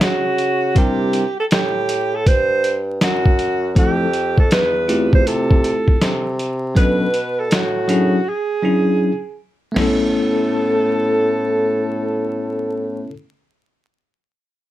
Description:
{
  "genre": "hip hop, jazz-hop",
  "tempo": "80 BPM",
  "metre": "4/4",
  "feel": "swing 65% on 16ths",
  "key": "A major",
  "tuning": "A4 = 440 Hz",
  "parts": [
    { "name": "breathy alto saxophone", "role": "melody", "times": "0.0-13.1 s", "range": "F#4 to C5", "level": "-20 LUFS", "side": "right 2 dB", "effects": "none" },
    { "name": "mellow bassoon", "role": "bass", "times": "0.0-13.1 s", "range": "E2 to C#3", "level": "-23 LUFS", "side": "equal", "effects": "none" },
    { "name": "boom bap sampler-style drum kit", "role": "drums", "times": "0.0-10.0 s", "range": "crash cymbal, hi-hat, kick drum, snare drum, toms", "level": "-17 LUFS", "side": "equal", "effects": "none" },
    { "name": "bell-like tine electric piano", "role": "accompaniment", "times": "0.7-13.1 s", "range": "F3 to Bb4", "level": "-19 LUFS", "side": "left 2 dB", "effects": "fast stereo tremolo" }
  ],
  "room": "moderate small room reverb, RT60 0.5 s",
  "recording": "dark, warm production, vinyl crackle",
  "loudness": "-15 LUFS",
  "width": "side -14 dB against mid",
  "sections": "0.0-9.8 A section; 9.8-12.8 B section",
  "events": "break 8.3-9.8",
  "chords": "0.0 N.C.; 0.8 C9; 3.8 Fmaj7; 6.8 Bm9; 8.3 E13; 9.8 Aadd9"
}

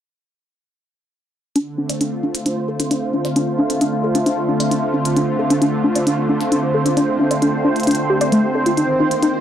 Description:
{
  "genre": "IDM",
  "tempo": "133 BPM",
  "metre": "4/4",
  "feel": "straight",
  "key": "D phrygian",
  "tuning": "A4 = 438 Hz",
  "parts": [
    { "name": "warm analog pad", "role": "sustained chords", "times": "1.6-9.4 s", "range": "D3 to C5", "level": "-19 LUFS", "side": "right 1 dB", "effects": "chorus" },
    { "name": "soft round pluck", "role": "arpeggios", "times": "1.6-9.3 s", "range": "A3 to D5", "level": "-19 LUFS", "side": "left 1 dB", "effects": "chorus, cassette tape, analog delay" },
    { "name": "electronic hi-hat", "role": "drums", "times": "1.6-9.3 s", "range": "none", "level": "-28 LUFS", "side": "right 1 dB", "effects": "none" }
  ],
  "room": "light reverb, digital ambience",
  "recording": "dry, gritty hardware recording, transformer saturation",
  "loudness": "-16 LUFS",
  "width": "side -10 dB against mid",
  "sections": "1.6-9.4 A section",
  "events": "filter sweep on synth arpeggio sound 1.6-9.4",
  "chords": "1.6 Dm7; 8.8 Eb6"
}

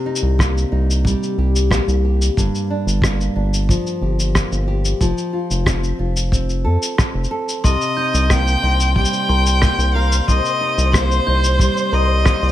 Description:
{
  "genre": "folktronica",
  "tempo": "91 BPM",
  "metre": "4/4",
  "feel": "straight",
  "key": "C minor",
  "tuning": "A4 = 441 Hz",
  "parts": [
    { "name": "nylon-string guitar", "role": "arpeggios", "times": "0.0-12.5 s", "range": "G2 to Bb4", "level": "-23 LUFS", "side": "equal", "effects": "ping-pong delay" },
    { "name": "round analog bass", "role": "bass", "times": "0.2-12.5 s", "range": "F1 to F2", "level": "-18 LUFS", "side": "equal", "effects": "tube saturation" },
    { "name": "electronic shaker and rim click", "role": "drums", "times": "0.2-12.5 s", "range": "none", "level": "-23 LUFS", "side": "left 1 dB", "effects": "none" },
    { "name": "kick drum", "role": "drums", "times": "0.4-12.4 s", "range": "none", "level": "-18 LUFS", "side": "equal", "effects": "none" },
    { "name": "clear violin", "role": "melody", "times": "7.6-12.5 s", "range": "C5 to G5", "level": "-20 LUFS", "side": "equal", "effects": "ping-pong delay" },
    { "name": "glockenspiel with brass mallets", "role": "second line", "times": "7.6-12.1 s", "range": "C6 to G6", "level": "-24 LUFS", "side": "left 6 dB", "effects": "tape echo" },
    { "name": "flickering grainy texture", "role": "texture", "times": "8.1-12.5 s", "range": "C5 to C6", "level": "-29 LUFS", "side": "left 2 dB", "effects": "built-in reverb" }
  ],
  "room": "studio ambience",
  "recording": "none",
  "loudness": "-15 LUFS",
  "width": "side -13 dB against mid",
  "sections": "0.0-12.5 A section",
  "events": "none",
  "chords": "0.0 Cm7; 2.4 Gm7; 5.0 F; 7.6 Cm7"
}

